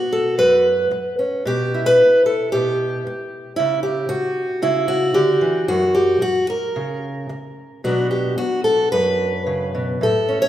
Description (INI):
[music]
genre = folk, solo fingerstyle acoustic guitar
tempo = 112 BPM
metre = 4/4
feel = rubato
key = B minor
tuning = A4 = 439 Hz
[part]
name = fingerpicked steel-string acoustic guitar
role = solo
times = 0.0-10.5 s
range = F#2 to C#5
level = -16 LUFS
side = equal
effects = none
[sound]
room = wet recital hall reverb, RT60 1.8 s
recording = recorded in a church or concert hall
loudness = -16 LUFS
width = side -12 dB against mid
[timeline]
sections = 0.0-10.5 A section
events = none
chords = 0.0 B5; 1.4 Em/B; 3.6 C#dim; 5.7 F#; 7.8 Bm